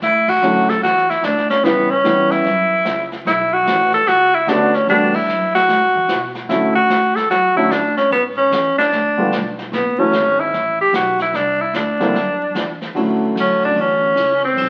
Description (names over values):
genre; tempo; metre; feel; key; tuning
jazz, small-group swing and bop; 148 BPM; 4/4; swing 64% on 8ths; D major; A4 = 439 Hz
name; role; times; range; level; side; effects
clear tenor saxophone; melody; 0.0-14.7 s; B3 to A4; -17 LUFS; equal; none
upright bass; bass; 0.0-14.7 s; F#1 to B2; -30 LUFS; equal; none
jazz brush drum kit; drums; 0.0-14.7 s; brushed snare drum, crash cymbal, hi-hat, kick drum, ride cymbal, snare drum; -30 LUFS; equal; none
warm baby grand piano; accompaniment; 0.4-14.1 s; D3 to F#4; -22 LUFS; equal; none
room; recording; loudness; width
moderate large studio reverb, RT60 1.1 s; very old 78 rpm record, vinyl crackle; -16 LUFS; mono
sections
0.0-13.0 A section; 13.0-14.7 B section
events
band accent 0.2, 5.1; tenor saxophone solo 13.0-14.7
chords
0.0 Dmaj9; 1.6 C#m7b5; 2.4 F#5; 3.3 Bm9; 4.9 Em11; 5.7 Asus2; 6.5 Dmaj7; 8.1 E6; 8.9 G9; 9.7 F#m7; 11.3 Cadd9; 13.0 Dmaj9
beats
| 0.02 0.42 0.83 1.23 | 1.64 2.04 2.45 2.85 | 3.25 3.66 4.06 4.47 | 4.87 5.28 5.68 6.09 | 6.49 6.89 7.30 7.70 | 8.11 8.51 8.91 9.32 | 9.72 10.13 10.53 10.93 | 11.34 11.74 12.15 12.55 | 12.95 13.36 13.76 14.17 | 14.57